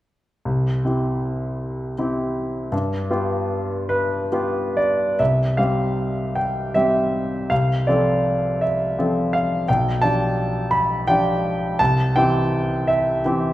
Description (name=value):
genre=classical, romantic character piece for solo piano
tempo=42-59 BPM (dotted quarters)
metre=6/8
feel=rubato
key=C major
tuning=A4 = 435 Hz
part: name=clear grand piano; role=solo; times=0.5-13.5 s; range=B1 to B5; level=-19 LUFS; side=equal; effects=none
room=moderate recital hall reverb, RT60 1.5 s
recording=recorded in a church or concert hall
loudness=-19 LUFS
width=side -15 dB against mid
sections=0.5-5.2 A section; 5.2-13.5 B section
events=none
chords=0.5 C; 2.7 G7; 5.2 C; 7.5 F/C; 9.7 G7/B; 11.8 C